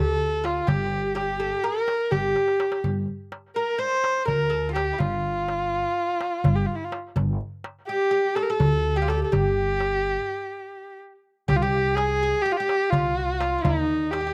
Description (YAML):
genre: Turkish makam ensemble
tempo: 250 BPM (eighths)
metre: 9/8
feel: straight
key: G makam huseyni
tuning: A4 = 441 Hz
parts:
  - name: rich kamancheh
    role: melody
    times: 0.0-14.3 s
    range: Eb4 to C5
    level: -27 LUFS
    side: equal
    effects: slapback echo
  - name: oud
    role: second line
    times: 0.0-14.3 s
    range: Eb4 to C5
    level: -31 LUFS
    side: equal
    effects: slapback echo
  - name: upright bass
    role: bass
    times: 0.0-14.3 s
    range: G1 to Eb2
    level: -30 LUFS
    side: equal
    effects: none
  - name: darbuka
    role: percussion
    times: 0.4-14.2 s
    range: none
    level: -30 LUFS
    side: equal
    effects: none
room: little or no reverb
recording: recorded outdoors, with no room sound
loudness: -24 LUFS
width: mono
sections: 0.0-11.5 A section; 11.5-14.3 B section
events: drum fill 2.4-2.8; break 10.4-11.5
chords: none